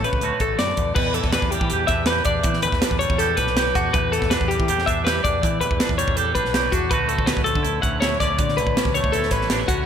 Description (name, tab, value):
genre	math rock and midwest emo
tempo	162 BPM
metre	4/4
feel	straight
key	unclear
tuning	A4 = 441 Hz
part	twangy electric guitar	accompaniment	0.0-9.9 s	D2 to G4	-26 LUFS	right 9 dB	slapback echo
part	twelve-string electric guitar	arpeggios	0.0-9.9 s	F#4 to F#5	-22 LUFS	left 4 dB	analog delay
part	growling fingered electric bass	bass	0.0-9.9 s	A1 to E3	-27 LUFS	right 1 dB	overdrive
part	crisp fusion drum kit	drums	0.0-9.8 s	crash cymbal, hi-hat, kick drum, snare drum	-23 LUFS	equal	none
room	moderate lush hall reverb, RT60 2.3 s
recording	big arena sound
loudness	-18 LUFS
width	side -8 dB against mid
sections	1.0-9.9 A section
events	none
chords	0.2 Dmaj9; 1.0 Em7; 6.9 Dmaj7